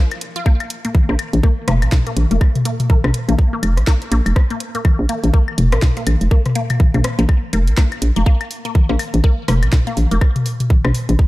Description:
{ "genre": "minimal techno", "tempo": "123 BPM", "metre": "4/4", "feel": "swing 59% on 16ths", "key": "unclear", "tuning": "A4 = 435 Hz", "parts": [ { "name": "garage drum kit", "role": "drums", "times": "0.1-11.2 s", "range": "hi-hat, snare drum", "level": "-28 LUFS", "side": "right 1 dB", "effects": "overdrive" }, { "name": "booming analog drum machine", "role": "percussion", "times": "0.1-11.2 s", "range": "claves, rim click, toms", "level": "-21 LUFS", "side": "left 2 dB", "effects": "overdrive, analog delay" }, { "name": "resonant blip pluck", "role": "riff", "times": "0.4-10.1 s", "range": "Bb3 to F4", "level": "-25 LUFS", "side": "left 2 dB", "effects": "phaser, sidechain pumping, tape echo" }, { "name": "electronic kick drum", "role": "drums", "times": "0.5-11.3 s", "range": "none", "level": "-13 LUFS", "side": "equal", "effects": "overdrive" }, { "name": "hollow knocking FM bass", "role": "bass", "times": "1.1-11.2 s", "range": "F1 to Bb1", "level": "-15 LUFS", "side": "equal", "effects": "sidechain pumping" } ], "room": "little or no reverb", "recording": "none", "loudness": "-14 LUFS", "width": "side -18 dB against mid", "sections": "0.0-11.3 A section", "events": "none", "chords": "none", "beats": "| 0.46 0.95 1.43 1.92 | 2.41 2.90 3.38 3.87 | 4.36 4.85 5.34 5.82 | 6.31 6.80 7.29 7.78 | 8.26 8.75 9.24 9.73 | 10.21 10.70 11.19" }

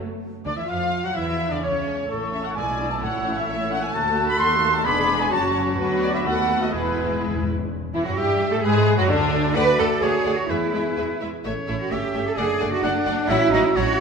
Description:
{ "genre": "quick classical-period movement for symphony orchestra", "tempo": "129 BPM", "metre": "2/4", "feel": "straight", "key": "unclear", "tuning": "A4 = 445 Hz", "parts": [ { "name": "mellow French horn section", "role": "sustained chords", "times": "0.0-14.0 s", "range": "C#3 to A4", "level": "-28 LUFS", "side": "left 2 dB", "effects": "none" }, { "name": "warm studio violin section", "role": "melody", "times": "0.5-13.8 s", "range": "D4 to F#5", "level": "-33 LUFS", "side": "left 6 dB", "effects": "none" }, { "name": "clear oboe", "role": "second line", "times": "0.5-14.0 s", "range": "F#4 to F#5", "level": "-29 LUFS", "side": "right 2 dB", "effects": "none" }, { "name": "small flute group", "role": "second line", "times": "0.5-7.5 s", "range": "C#5 to F#6", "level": "-31 LUFS", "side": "left 1 dB", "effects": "none" }, { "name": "warm studio violin section", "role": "second line", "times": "0.5-13.8 s", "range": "D4 to B#5", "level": "-30 LUFS", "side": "left 4 dB", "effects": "none" }, { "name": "rich studio viola section", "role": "accompaniment", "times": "0.5-13.9 s", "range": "D3 to A4", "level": "-28 LUFS", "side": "equal", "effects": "none" }, { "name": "dark trumpet section", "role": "stabs", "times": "0.5-7.2 s", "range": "B4 to B#5", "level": "-25 LUFS", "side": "right 1 dB", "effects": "none" }, { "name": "rich studio double bass section", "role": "bass", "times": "0.5-13.8 s", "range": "E1 to A2", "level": "-29 LUFS", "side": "right 3 dB", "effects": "none" }, { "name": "warm symphonic cello section", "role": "bass", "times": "0.5-14.0 s", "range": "D2 to B4", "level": "-26 LUFS", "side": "right 3 dB", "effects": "none" }, { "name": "timpani", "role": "percussion", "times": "3.0-3.7, 6.7-7.7 s", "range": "E2 to A2", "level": "-32 LUFS", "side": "left 2 dB", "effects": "none" } ], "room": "wet concert hall reverb, RT60 2.3 s", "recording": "minimal, uncompressed stereo recording", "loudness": "-19 LUFS", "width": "side -5 dB against mid", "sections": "0.2-7.7 A section; 7.7-14.0 B section", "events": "timpani fill 6.7-7.7", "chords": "0.2 Dsus2; 0.7 N.C.; 1.2 C#m; 2.1 A; 2.6 E7/B; 3.0 A; 3.9 D; 4.4 D#dim7; 4.9 E7; 5.3 F#m; 5.8 Bm/D; 6.3 B7/D#; 6.7 E; 7.7 Esus2; 8.2 A5/G; 8.6 D; 10.5 E; 11.5 A; 11.9 A7/G; 12.4 D/F#; 13.3 F#m7", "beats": "| 0.22 0.69 | 1.16 1.63 | 2.10 2.56 | 3.02 3.48 | 3.94 4.40 | 4.86 5.32 | 5.79 6.27 | 6.75 7.23 | 7.71 8.18 | 8.63 9.09 | 9.55 10.02 | 10.50 10.98 | 11.45 11.92 | 12.38 12.84 | 13.30 13.77" }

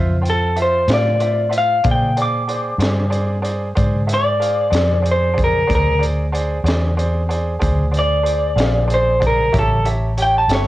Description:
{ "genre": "slow blues", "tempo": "62 BPM (dotted quarters)", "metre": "12/8", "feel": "straight", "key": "unclear", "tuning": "A4 = 440 Hz", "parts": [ { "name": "bright grand piano", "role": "accompaniment", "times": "0.0-10.7 s", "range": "F4 to G5", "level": "-25 LUFS", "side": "right 2 dB", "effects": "cassette tape" }, { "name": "vintage muted fingered electric bass", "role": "bass", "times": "0.0-10.7 s", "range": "G1 to Bb2", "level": "-19 LUFS", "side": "equal", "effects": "none" }, { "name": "electric guitar through a small old amp", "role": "melody", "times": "0.3-10.7 s", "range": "A4 to D6", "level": "-17 LUFS", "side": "equal", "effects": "cassette tape" }, { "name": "crunchy breakbeat drum kit", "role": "drums", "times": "0.3-10.7 s", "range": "hi-hat, kick drum, snare drum", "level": "-23 LUFS", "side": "equal", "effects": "cassette tape" } ], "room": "light reverb, small room ambience", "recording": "home recording on cassette", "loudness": "-15 LUFS", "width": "side -16 dB against mid", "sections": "0.0-10.7 A section", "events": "none", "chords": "0.0 Dm9; 1.8 Bb7; 9.5 A7", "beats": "0.88 | 1.84 2.80 3.76 4.72 | 5.68 6.64 7.61 8.57 | 9.53 10.49" }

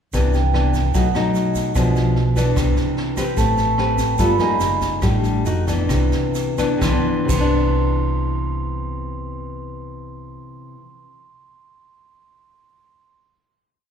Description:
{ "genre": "bossa nova", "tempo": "126-148 BPM", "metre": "4/4", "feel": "straight", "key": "C major", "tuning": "A4 = 440 Hz", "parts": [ { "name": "nylon-string guitar", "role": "accompaniment", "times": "0.1-10.9 s", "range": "A2 to B4", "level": "-20 LUFS", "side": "left 2 dB", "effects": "none" }, { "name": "hollow-body short-scale fingered electric bass", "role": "bass", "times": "0.1-10.4 s", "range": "F1 to C2", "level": "-22 LUFS", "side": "equal", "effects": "none" }, { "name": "jazz brush drum kit", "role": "drums", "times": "0.1-7.4 s", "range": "crash cymbal, kick drum, rim click, snare drum", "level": "-26 LUFS", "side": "equal", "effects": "none" }, { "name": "tube shaker", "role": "percussion", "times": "0.1-7.4 s", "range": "none", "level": "-37 LUFS", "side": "right 8 dB", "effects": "none" }, { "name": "vibraphone with medium hard mallets", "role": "accompaniment", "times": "0.3-13.1 s", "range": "F#5 to C6", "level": "-26 LUFS", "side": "right 6 dB", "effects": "none" } ], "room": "wet scoring stage reverb, RT60 1.5 s", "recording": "recorded in a church or concert hall", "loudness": "-17 LUFS", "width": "side -8 dB against mid", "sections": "0.1-6.8 A section; 6.8-10.6 final chord", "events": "slowing down 3.4-6.8", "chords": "0.1 Cmaj9; 0.9 B7; 1.8 E7b9/B; 2.6 Cmaj9; 3.4 Am9; 4.2 G9; 4.6 F#69; 5.0 A7sus4; 5.5 F7b9; 5.9 Cmaj9", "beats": "| 0.14 0.54 0.95 1.35 | 1.76 2.16 2.57 2.97 | 3.38 3.78 4.19 4.61 | 5.03 5.46 5.90 6.35 | 6.82 7.29 7.77 8.25 | 8.72 9.20 9.67 10.15" }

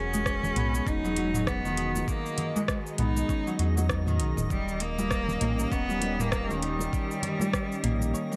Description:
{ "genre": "organic downtempo", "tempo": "99 BPM", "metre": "4/4", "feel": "swing 58% on 16ths", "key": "unclear", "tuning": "A4 = 440 Hz", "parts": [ { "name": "rich cello", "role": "melody", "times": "0.0-8.4 s", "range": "G3 to D#4", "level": "-34 LUFS", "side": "equal", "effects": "delay" }, { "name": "warm analog pad", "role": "sustained chords", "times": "0.0-8.4 s", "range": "D#3 to D#5", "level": "-41 LUFS", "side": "equal", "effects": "chorus, sidechain pumping" }, { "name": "Celtic harp", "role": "arpeggios", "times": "0.0-8.4 s", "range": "D#3 to G#4", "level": "-35 LUFS", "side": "equal", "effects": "tape echo" }, { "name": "round analog bass", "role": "bass", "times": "0.0-8.1 s", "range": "D#1 to E2", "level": "-33 LUFS", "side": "equal", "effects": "sidechain pumping" }, { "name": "drifting glass-harmonics texture", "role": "texture", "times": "1.0-8.4 s", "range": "D#4 to D#5", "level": "-46 LUFS", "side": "equal", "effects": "chorus, built-in reverb" }, { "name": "afro-pop drum kit", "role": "drums", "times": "0.1-8.4 s", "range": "cabasa, hi-hat, rim click, toms", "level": "-35 LUFS", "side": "equal", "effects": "none" }, { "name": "congas", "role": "percussion", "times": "0.1-8.1 s", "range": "none", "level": "-40 LUFS", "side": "equal", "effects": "none" }, { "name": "electronic kick drum", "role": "drums", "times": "0.3-7.7 s", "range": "none", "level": "-34 LUFS", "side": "equal", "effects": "none" } ], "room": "light reverb", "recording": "none", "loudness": "-28 LUFS", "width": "mono", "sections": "0.0-8.4 A section", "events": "break 8.1", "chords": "0.0 Emaj7; 4.5 D#7", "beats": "0.26 0.86 1.47 | 2.08 2.68 3.29 3.90 | 4.50 5.11 5.71 6.32 | 6.93 7.53 8.14" }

